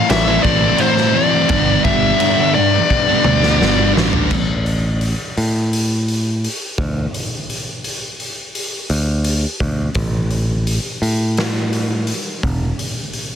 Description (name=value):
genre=quiet-loud alternative rock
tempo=85 BPM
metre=4/4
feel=straight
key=unclear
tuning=A4 = 444 Hz
part: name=dark smooth lead guitar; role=melody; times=0.0-3.9 s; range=C5 to E5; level=-17 LUFS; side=left 5 dB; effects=overdrive
part: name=string machine, cellos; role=sustained chords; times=0.0-4.3 s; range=E3 to A5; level=-29 LUFS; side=equal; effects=none
part: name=thick fuzz guitar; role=riff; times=0.0-4.3 s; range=G2 to E4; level=-20 LUFS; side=left 16 dB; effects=distortion
part: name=picked electric bass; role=bass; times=0.1-12.7 s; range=E1 to A2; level=-18 LUFS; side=equal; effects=none
part: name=raw garage drum kit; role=drums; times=0.1-13.3 s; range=crash cymbal, hi-hat, kick drum, snare drum, toms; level=-21 LUFS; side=equal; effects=none
part: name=thick fuzz guitar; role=riff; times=0.3-4.3 s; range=G2 to E4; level=-18 LUFS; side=right 11 dB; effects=distortion
room=little or no reverb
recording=dense, heavily limited modern master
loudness=-15 LUFS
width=side -8 dB against mid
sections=0.0-4.3 A section; 4.3-13.4 B section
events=drum fill 2.9-4.3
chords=0.0 Am; 1.5 G; 4.3 N.C.; 12.4 E5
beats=0.11 0.81 | 1.51 2.21 2.91 3.62 | 4.32 5.02 5.73 6.43 | 7.14 7.84 8.55 9.26 | 9.96 10.67 11.38 12.09 | 12.79